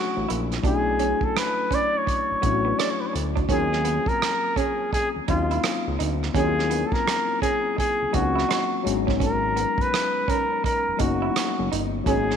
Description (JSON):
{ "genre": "R&B, neo-soul", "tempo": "84 BPM", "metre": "4/4", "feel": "swing 63% on 16ths", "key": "unclear", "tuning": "A4 = 441 Hz", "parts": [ { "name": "warm flugelhorn", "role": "melody", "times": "0.0-12.4 s", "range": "E#4 to D5", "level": "-24 LUFS", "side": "equal", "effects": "slapback echo" }, { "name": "tine electric piano", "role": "accompaniment", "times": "0.0-12.4 s", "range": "F#3 to F#4", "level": "-28 LUFS", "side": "left 10 dB", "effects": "medium stereo tremolo" }, { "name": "fat analog bass", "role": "bass", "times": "0.2-12.4 s", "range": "F#1 to D#2", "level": "-28 LUFS", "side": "equal", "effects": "none" }, { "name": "electric guitar through a small old amp", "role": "second line", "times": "0.3-12.2 s", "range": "B3 to E4", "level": "-32 LUFS", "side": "right 11 dB", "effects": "wide subtle chorus" }, { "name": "warm soul drum kit", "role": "drums", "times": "0.3-12.4 s", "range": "hi-hat, kick drum, rim click", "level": "-28 LUFS", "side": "right 3 dB", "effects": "none" } ], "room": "moderate echo chamber reverb, RT60 2.1 s", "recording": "1960s-style stereo with parts hard left and right", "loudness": "-21 LUFS", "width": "side -7 dB against mid", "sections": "0.0-12.4 A section", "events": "none", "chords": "0.0 Bm9; 3.5 D#m9; 8.8 G#m9" }